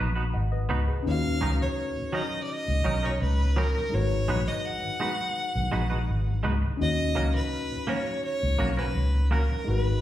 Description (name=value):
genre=reggae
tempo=84 BPM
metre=4/4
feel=straight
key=Eb minor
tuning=A4 = 439 Hz
part: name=tine electric piano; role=accompaniment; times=0.0-10.0 s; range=Ab3 to Gb5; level=-34 LUFS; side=left 6 dB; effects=medium stereo tremolo
part: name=twangy electric guitar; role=stabs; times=0.0-9.5 s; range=Gb3 to Cb5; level=-33 LUFS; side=right 2 dB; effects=none
part: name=vintage muted fingered electric bass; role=bass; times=0.0-10.0 s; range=Ab1 to Eb2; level=-26 LUFS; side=equal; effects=none
part: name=clear fiddle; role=melody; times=1.1-10.0 s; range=Bb4 to Gb5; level=-31 LUFS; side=equal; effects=none
part: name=mellow tonewheel organ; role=accompaniment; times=1.2-9.9 s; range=Eb2 to Db4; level=-38 LUFS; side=right 1 dB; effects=none
room=wet large studio reverb, RT60 1.4 s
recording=band playing live in one room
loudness=-24 LUFS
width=side -13 dB against mid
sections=0.0-10.0 A section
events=none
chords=0.0 Abm7; 1.1 Ebm7; 3.9 Abm7; 6.8 Ebm7